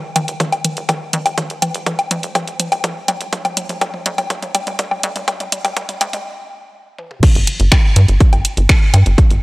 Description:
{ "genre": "melodic techno", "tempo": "123 BPM", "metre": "4/4", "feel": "straight", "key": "unclear", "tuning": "A4 = 440 Hz", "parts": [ { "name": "tight sequencer bass", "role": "bass", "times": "0.2-9.4 s", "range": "F1 to G2", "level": "-15 LUFS", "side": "equal", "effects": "sidechain pumping, high-pass filter" }, { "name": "house drum kit", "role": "drums", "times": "0.2-9.4 s", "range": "crash cymbal, finger snaps, hi-hat, toms, woodblock", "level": "-18 LUFS", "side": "left 1 dB", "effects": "overdrive" }, { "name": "electronic kick drum", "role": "drums", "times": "0.4-9.3 s", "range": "none", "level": "-13 LUFS", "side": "equal", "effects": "overdrive, high-pass filter on kick, high-pass filter on room" } ], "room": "light reverb", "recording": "dry, gritty hardware recording, cassette tape, high-pass filter", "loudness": "-14 LUFS", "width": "side -22 dB against mid", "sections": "0.0-7.2 A section; 7.2-9.4 B section", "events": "build-up 0.0-7.2; drum fill 0.0-6.3, 7.0; stop 6.3-7.2; drop 7.2-9.4", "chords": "none" }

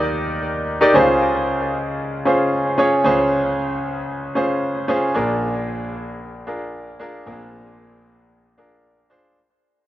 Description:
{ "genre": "pop", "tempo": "114 BPM", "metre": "4/4", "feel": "straight", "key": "unclear", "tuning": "A4 = 439 Hz", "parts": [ { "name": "clear concert grand piano", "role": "solo", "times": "0.0-9.4 s", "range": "Bb1 to D5", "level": "-18 LUFS", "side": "equal", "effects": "cassette tape, tape echo" } ], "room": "moderate spring reverb, RT60 2.9 s", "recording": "home recording on cassette", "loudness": "-17 LUFS", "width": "side -14 dB against mid", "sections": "0.9-9.4 A section", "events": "fade-out 0.9-9.4", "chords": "0.0 Ebmaj7; 0.9 Dbmaj7; 5.2 Bb7" }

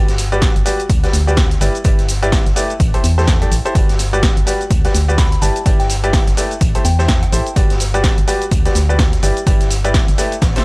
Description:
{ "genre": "piano house", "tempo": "126 BPM", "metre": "4/4", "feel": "swing 59% on 16ths", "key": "G major", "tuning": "A4 = 440 Hz", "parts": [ { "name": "bright grand piano", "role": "riff", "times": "0.0-10.6 s", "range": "G3 to D5", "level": "-20 LUFS", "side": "equal", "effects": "sidechain pumping, analog delay" }, { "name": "organ-like FM bass", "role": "bass", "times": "0.0-10.6 s", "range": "G1 to E2", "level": "-17 LUFS", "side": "equal", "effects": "sidechain pumping" }, { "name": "punchy analog drum machine", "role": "drums", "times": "0.1-10.6 s", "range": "cabasa, hi-hat, snare drum", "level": "-22 LUFS", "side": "equal", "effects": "none" }, { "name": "raw garage drum kit", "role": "drums", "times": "0.1-10.6 s", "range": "hi-hat, snare drum", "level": "-29 LUFS", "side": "equal", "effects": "high-pass filter on hats, high-pass filter on snare, high-pass filter on room" }, { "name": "electronic kick drum", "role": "drums", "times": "0.4-10.5 s", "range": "none", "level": "-15 LUFS", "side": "equal", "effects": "none" }, { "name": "soft synth bell", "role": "melody", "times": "5.2-7.6 s", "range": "G5 to B5", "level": "-27 LUFS", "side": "left 2 dB", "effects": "chorus, phaser, analog delay" } ], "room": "studio reverb", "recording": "dry, gritty hardware recording, cassette tape", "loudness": "-12 LUFS", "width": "side -28 dB against mid", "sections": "0.0-10.6 A section", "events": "drum fill 10.4", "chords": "0.0 Gmaj7; 1.6 Em7/G; 2.8 Am7; 3.8 Gmaj7; 5.4 Em7/G; 6.6 Am7; 7.6 Gmaj7; 9.2 Em7/G" }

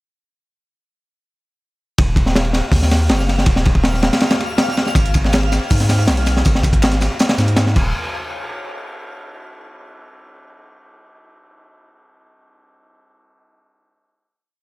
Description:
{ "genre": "drum and bass, jungle", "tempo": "161 BPM", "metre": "4/4", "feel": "straight", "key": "Eb minor", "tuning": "A4 = 440 Hz", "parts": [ { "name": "saturated sub bass", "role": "bass", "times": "2.0-7.9 s", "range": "Eb1 to Ab2", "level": "-17 LUFS", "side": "equal", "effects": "none" }, { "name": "crunchy breakbeat drum kit", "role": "drums", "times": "2.0-7.8 s", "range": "crash cymbal, hi-hat, kick drum, ride cymbal, snare drum", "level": "-16 LUFS", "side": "equal", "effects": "none" }, { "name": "twinkling granular texture", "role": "texture", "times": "2.4-8.0 s", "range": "F5 to F6", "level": "-29 LUFS", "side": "left 2 dB", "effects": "built-in reverb" }, { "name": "dusty soul sampler-style drum kit", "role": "drums", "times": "5.0-7.7 s", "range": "hi-hat, snare drum, tambourine", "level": "-29 LUFS", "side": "equal", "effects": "high-pass filter on perc, high-pass filter on hats, high-pass filter on snare, high-pass filter on room" } ], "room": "little or no reverb", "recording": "none", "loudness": "-14 LUFS", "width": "side -20 dB against mid", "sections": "2.0-7.9 drop; 7.9-9.4 final hit", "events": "drop 2.0-7.9", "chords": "2.0 Ebm; 5.0 Abm; 7.8 Ebsus2; 7.9 N.C." }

